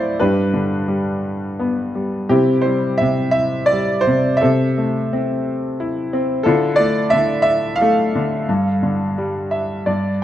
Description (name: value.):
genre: classical, lyrical solo piano.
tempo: 86 BPM.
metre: 3/4.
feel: rubato.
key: unclear.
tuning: A4 = 440 Hz.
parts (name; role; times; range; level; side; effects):
bright grand piano; solo; 0.0-10.2 s; G2 to A5; -16 LUFS; equal; none.
room: moderate recital hall reverb, RT60 1.4 s.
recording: dark, warm production.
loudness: -16 LUFS.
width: side -12 dB against mid.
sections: 0.0-10.2 A section.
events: grand piano fill 9.2-10.2.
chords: 0.2 G; 2.3 C; 4.4 Am/C; 6.4 Dmadd9; 8.5 G5.